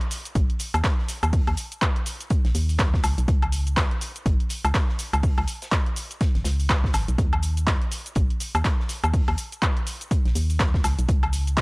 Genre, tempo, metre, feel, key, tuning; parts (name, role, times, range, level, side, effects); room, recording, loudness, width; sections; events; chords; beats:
deep house; 123 BPM; 4/4; swing 59% on 16ths; A4 = 441 Hz
deep house drum kit; drums; 0.0-11.6 s; handclaps, hi-hat, shaker, woodblock; -28 LUFS; equal; overdrive
natural country drum kit; drums; 0.1-11.6 s; hi-hat, snare drum; -42 LUFS; left 1 dB
organ-like FM bass; bass; 0.4-11.6 s; Ab1 to Eb2; -24 LUFS; equal; sidechain pumping
electronic kick drum; drums; 0.4-11.6 s; -23 LUFS; equal; overdrive
small room ambience; dry, gritty hardware recording, transformer saturation, cassette tape; -21 LUFS; side -28 dB against mid
0.0-11.6 A section
0.35 0.84 | 1.33 1.82 2.31 2.79 | 3.28 3.77 4.26 4.75 | 5.23 5.72 6.21 6.70 | 7.18 7.67 8.16 8.65 | 9.13 9.62 10.11 10.60 | 11.09 11.57